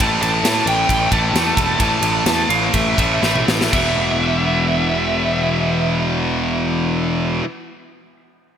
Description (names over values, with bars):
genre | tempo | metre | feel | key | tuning
heavy metal | 117-137 BPM | 4/4 | straight | unclear | A4 = 442 Hz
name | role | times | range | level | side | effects
high-gain lead guitar | melody | 0.0-7.4 s | E5 to A5 | -21 LUFS | right 2 dB | distortion, digital delay
high-gain distorted guitar | riff | 0.0-7.4 s | E2 to A3 | -19 LUFS | equal | distortion
fuzz picked electric bass | bass | 0.0-7.4 s | E1 to A2 | -22 LUFS | equal | overdrive
tight metal drum kit | drums | 0.0-3.8 s | crash cymbal, kick drum, ride cymbal, snare drum, toms | -21 LUFS | equal | none
room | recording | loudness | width
moderate lush hall reverb, RT60 2.1 s | bright 1980s-style digital production | -15 LUFS | side -8 dB against mid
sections
0.0-3.7 A section; 3.7-7.8 B section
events
slowing down 0.0-3.7; drum fill 3.2-3.7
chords
0.0 A5; 3.7 E5